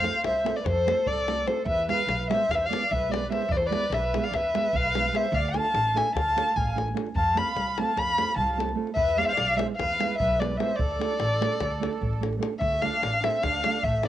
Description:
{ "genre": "balkan folk, Balkan wedding band", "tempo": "296 BPM (eighths)", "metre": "9/8", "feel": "straight", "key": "D dorian sharp4", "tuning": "A4 = 440 Hz", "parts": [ { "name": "dark violin", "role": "melody", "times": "0.0-14.1 s", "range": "C5 to B5", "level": "-25 LUFS", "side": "left 1 dB", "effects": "cassette tape" }, { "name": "accordion", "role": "second line", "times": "0.0-14.1 s", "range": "A3 to F5", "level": "-36 LUFS", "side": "right 8 dB", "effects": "light tremolo tuning, cassette tape" }, { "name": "nylon-string guitar", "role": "accompaniment", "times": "0.0-14.1 s", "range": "G#3 to A4", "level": "-32 LUFS", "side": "right 8 dB", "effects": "cassette tape" }, { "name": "upright bass", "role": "bass", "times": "0.0-14.1 s", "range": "A1 to F2", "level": "-32 LUFS", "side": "equal", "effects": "tube saturation" }, { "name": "davul", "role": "percussion", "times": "0.0-14.1 s", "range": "none", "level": "-33 LUFS", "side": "left 2 dB", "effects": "none" } ], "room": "light reverb, small room reverb", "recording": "home recording on cassette", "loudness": "-23 LUFS", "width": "side -12 dB against mid", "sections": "0.0-12.6 A section; 12.6-14.1 A section", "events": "none", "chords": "0.0 F; 1.7 E; 5.3 Dm; 7.1 F; 9.0 E; 10.8 Dm" }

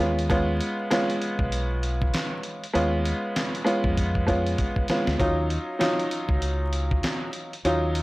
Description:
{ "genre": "hip hop, boom-bap hip-hop", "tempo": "98 BPM", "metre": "4/4", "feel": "swing 58% on 16ths", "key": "unclear", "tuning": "A4 = 439 Hz", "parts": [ { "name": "bright upright piano", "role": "accompaniment", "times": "0.0-8.0 s", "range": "Gb3 to F4", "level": "-25 LUFS", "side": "equal", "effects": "cassette tape, high-pass filter, low-pass filter" }, { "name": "deep dub fingered electric bass", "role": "bass", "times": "0.0-8.0 s", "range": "Cb2 to F2", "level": "-26 LUFS", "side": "equal", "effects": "transformer saturation" }, { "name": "dusty soul sampler-style drum kit", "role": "drums", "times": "0.2-8.0 s", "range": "handclaps, hi-hat, kick drum, snare drum", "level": "-28 LUFS", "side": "equal", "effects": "vintage 12-bit sampler grit" } ], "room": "little or no reverb", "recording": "dry, gritty hardware recording, vinyl crackle", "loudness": "-23 LUFS", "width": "side -20 dB against mid", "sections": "0.0-8.0 A section", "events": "drum fill 4.0-5.2", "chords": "0.0 Db7; 5.2 Ebm9" }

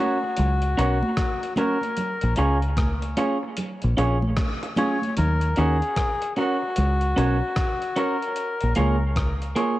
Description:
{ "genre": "dub reggae", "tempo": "75 BPM", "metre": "4/4", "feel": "swing 64% on 16ths", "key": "Eb minor", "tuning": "A4 = 440 Hz", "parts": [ { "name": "melodica", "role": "melody", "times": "0.0-8.7 s", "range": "Gb4 to Db5", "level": "-28 LUFS", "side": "left 2 dB", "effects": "cassette tape, dub echo" }, { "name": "clean electric guitar", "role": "accompaniment", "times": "0.0-9.8 s", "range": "Bb3 to Db5", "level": "-26 LUFS", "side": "right 2 dB", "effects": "cassette tape, dub echo" }, { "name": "deep dub fingered electric bass", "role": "bass", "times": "0.4-9.5 s", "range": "Bb1 to Eb2", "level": "-22 LUFS", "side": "equal", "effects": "tube saturation" }, { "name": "dusty soul sampler-style drum kit", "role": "drums", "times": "0.4-9.8 s", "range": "hi-hat, kick drum, rim click", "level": "-29 LUFS", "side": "equal", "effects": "none" }, { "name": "congas", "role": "percussion", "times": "0.4-5.4 s", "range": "none", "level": "-31 LUFS", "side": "right 1 dB", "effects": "dub echo" } ], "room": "light reverb", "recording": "home recording on cassette", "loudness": "-21 LUFS", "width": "side -16 dB against mid", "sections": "0.0-9.8 A section", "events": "part muted 5.2-9.8; filter sweep on clean electric guitar 8.4-9.8", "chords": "0.0 Ebm7 (rootless); 2.0 Bbm7; 5.2 Ebm7; 8.4 Bbm7" }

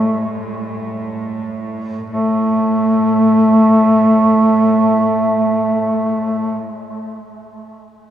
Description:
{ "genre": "caucasian folk, Caucasian lament", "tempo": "free time", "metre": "none", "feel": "none", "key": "unclear", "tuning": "A4 = 442 Hz", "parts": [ { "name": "mellow duduk", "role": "melody", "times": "0.0-6.6 s", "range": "A3", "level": "-13 LUFS", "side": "equal", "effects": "tape echo" }, { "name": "rich chamber cello section", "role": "drone", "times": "0.0-6.6 s", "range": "A2", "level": "-26 LUFS", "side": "right 2 dB", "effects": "none" } ], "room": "wet lush hall reverb, RT60 3.1 s", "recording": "rough home demo mix", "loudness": "-12 LUFS", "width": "side -11 dB against mid", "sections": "0.0-2.1 A section; 2.1-7.0 B section", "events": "slowing down 0.0-2.1", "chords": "none" }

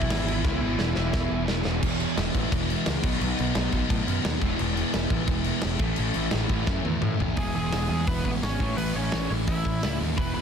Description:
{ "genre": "punk rock", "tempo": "173 BPM", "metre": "4/4", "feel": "straight", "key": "E major", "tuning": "A4 = 440 Hz", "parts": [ { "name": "smooth overdriven lead guitar", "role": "melody", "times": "0.0-1.4, 7.4-10.4 s", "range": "B3 to B5", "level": "-32 LUFS", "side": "equal", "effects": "none" }, { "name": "crunchy overdriven guitar", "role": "riff", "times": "0.0-10.4 s", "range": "E2 to B3", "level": "-31 LUFS", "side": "equal", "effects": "none" }, { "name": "sludgy distorted guitar", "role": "riff", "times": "0.0-10.4 s", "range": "A2 to G#4", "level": "-31 LUFS", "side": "right 1 dB", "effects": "overdrive" }, { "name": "growling picked electric bass", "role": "bass", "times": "0.0-10.4 s", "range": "E1 to A2", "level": "-29 LUFS", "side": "equal", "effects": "overdrive" }, { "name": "big rock drum kit", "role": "drums", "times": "0.0-10.3 s", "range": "crash cymbal, hi-hat, kick drum, snare drum, toms", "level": "-28 LUFS", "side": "equal", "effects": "soft clipping on snare" } ], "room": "little or no reverb", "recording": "dense, heavily limited modern master", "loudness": "-23 LUFS", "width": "side -7 dB against mid", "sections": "0.0-1.8 A section; 1.8-7.4 B section; 7.4-10.4 C section", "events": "drum fill 0.4-1.8, 6.7-7.4", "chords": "0.0 E; 3.0 B; 4.4 E; 5.8 A; 7.4 E; 8.6 A" }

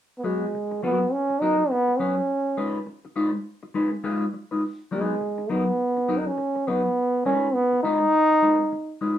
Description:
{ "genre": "funk", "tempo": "103 BPM", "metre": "4/4", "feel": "swing 60% on 16ths", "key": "G# dorian", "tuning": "A4 = 440 Hz", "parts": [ { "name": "breathy trombone", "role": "melody", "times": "0.2-9.0 s", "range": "G#3 to D#4", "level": "-22 LUFS", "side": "right 1 dB", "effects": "none" }, { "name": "mellow electric guitar", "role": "accompaniment", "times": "0.2-9.2 s", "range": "F#3 to B4", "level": "-26 LUFS", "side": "left 2 dB", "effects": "phaser" } ], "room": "moderate studio reverb, RT60 0.6 s", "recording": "band playing live in one room", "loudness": "-22 LUFS", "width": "side -11 dB against mid", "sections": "0.0-9.2 A section", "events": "none", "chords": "0.0 G#m9; 2.3 C#9; 4.6 G#m9; 7.0 G#m6" }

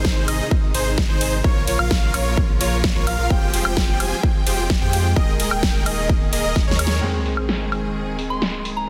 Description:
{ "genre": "EDM, festival progressive house", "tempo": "129 BPM", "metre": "4/4", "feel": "straight", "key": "Ab major", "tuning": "A4 = 440 Hz", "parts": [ { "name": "clear studio string section", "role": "sustained chords", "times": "0.0-8.9 s", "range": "C3 to G5", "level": "-32 LUFS", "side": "equal", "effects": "sidechain pumping" }, { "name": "unison lead", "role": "arpeggios", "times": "0.0-7.0 s", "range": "C5 to Ab5", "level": "-30 LUFS", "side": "equal", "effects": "sidechain pumping, digital delay" }, { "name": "supersaw chords", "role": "riff", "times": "0.0-7.0 s", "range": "Eb4 to Ab5", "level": "-29 LUFS", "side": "equal", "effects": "sidechain pumping, digital delay" }, { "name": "saturated sub bass", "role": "bass", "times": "0.0-7.0 s", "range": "Eb1 to F2", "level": "-26 LUFS", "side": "equal", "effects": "sidechain pumping" }, { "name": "big-room dance drum kit", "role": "drums", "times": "0.0-8.7 s", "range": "crash cymbal, hi-hat, ride cymbal, snare drum, woodblock", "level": "-28 LUFS", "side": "equal", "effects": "low-pass filter on hats, low-pass filter on perc, low-pass filter on snare, low-pass filter on cymbals, low-pass filter on room" }, { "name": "electronic kick drum", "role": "drums", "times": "0.0-6.7 s", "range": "none", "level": "-22 LUFS", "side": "equal", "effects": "none" }, { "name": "clear grand piano", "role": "accompaniment", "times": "7.0-8.9 s", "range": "Eb3 to Ab4", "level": "-31 LUFS", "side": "equal", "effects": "sidechain pumping, digital delay" }, { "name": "sub drop", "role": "sound effects", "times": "7.0-8.9 s", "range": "none", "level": "-30 LUFS", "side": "equal", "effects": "none" }, { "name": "soft synth bell", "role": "melody", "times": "8.3-8.9 s", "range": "Bb5 to C6", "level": "-28 LUFS", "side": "equal", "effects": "chorus, phaser, digital delay" } ], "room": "light reverb", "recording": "dense, heavily limited modern master", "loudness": "-20 LUFS", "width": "mono", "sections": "0.0-7.0 A section; 7.0-8.9 B section", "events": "drop 0.0-7.0; drum fill 6.6-7.0; band accent 6.9; impact 7.0-8.9", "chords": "0.0 Ab; 1.4 Bbm; 3.3 Fmadd9; 5.2 Ebsus4; 7.0 Ab" }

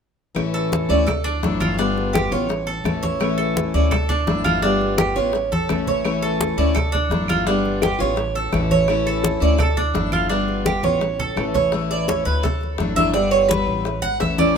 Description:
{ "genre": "latin, Cuban son and guajira", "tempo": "169 BPM", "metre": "4/4", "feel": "straight", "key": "A major", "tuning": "A4 = 440 Hz", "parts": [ { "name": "picked steel-string acoustic guitar", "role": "accompaniment", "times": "0.3-14.6 s", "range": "E3 to F4", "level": "-24 LUFS", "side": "left 5 dB", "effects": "none" }, { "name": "upright bass", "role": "bass", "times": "0.4-14.6 s", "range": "G1 to D2", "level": "-25 LUFS", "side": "equal", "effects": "none" }, { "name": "bongos", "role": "percussion", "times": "0.4-14.6 s", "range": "none", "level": "-29 LUFS", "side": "left 6 dB", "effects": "none" }, { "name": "claves", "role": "percussion", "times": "0.4-11.5 s", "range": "none", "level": "-34 LUFS", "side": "right 11 dB", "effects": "none" }, { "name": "congas", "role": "percussion", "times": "0.4-14.6 s", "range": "none", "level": "-26 LUFS", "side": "left 1 dB", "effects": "none" }, { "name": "Cuban tres", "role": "arpeggios", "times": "0.5-14.6 s", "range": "D4 to F#5", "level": "-21 LUFS", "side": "right 4 dB", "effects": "none" } ], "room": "moderate plate reverb, RT60 2.9 s", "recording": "minimal, uncompressed stereo recording", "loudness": "-18 LUFS", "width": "side -6 dB against mid", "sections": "0.4-11.7 A section; 11.7-14.6 B section", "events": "drum fill 5.5-6.0, 10.8-11.7; Cuban tres solo 11.7-14.6", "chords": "0.4 A; 1.1 Dadd9; 1.8 G7; 2.5 A; 3.9 Dadd9; 4.6 G7; 5.3 A; 6.8 Dadd9; 7.5 G7; 8.2 A; 9.6 Dadd9; 10.3 G7; 11.0 A; 12.4 Dadd9; 13.1 G7; 13.9 A" }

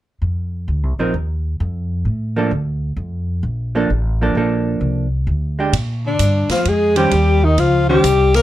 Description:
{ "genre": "jazz, small-group swing and bop", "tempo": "130 BPM", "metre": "3/4", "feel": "swing 66% on 8ths", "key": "Bb major", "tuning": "A4 = 440 Hz", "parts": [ { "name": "upright bass", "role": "bass", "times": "0.2-8.4 s", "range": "A1 to Bb2", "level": "-18 LUFS", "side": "equal", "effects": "none" }, { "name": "vintage hollow-body jazz guitar", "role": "accompaniment", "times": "1.0-8.0 s", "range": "Eb3 to C5", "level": "-18 LUFS", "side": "right 3 dB", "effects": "none" }, { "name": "open jazz drum kit", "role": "drums", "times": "5.7-8.4 s", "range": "hi-hat, kick drum, ride cymbal, snare drum", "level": "-26 LUFS", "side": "right 1 dB", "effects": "none" }, { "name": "clear alto saxophone", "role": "melody", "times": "6.1-8.4 s", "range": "D4 to Bb4", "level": "-16 LUFS", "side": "left 3 dB", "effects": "none" }, { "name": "growling tenor saxophone", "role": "second line", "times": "6.1-8.4 s", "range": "D3 to Bb3", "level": "-20 LUFS", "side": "right 2 dB", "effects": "none" } ], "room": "light reverb", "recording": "dark, warm production", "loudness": "-15 LUFS", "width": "side -14 dB against mid", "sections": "0.2-5.7 A section; 5.7-8.4 B section", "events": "none", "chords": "0.2 F7sus4; 1.6 Bbmaj7; 5.7 Bb6; 7.1 Eb6" }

